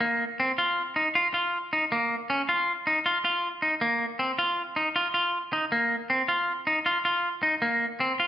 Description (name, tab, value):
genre	progressive instrumental, progressive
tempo	158 BPM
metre	5/4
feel	straight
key	unclear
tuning	A4 = 440 Hz
part	clean electric guitar	solo	0.0-8.3 s	Bb3 to F4	-24 LUFS	equal	none
room	wet large studio reverb, RT60 1.4 s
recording	band playing live in one room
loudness	-24 LUFS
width	side -11 dB against mid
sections	0.0-8.3 A section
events	none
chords	none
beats	| 0.01 0.39 0.77 1.15 1.53 | 1.92 2.30 2.68 3.06 3.44 | 3.82 4.20 4.58 4.96 5.34 | 5.72 6.10 6.48 6.86 7.24 | 7.62 8.00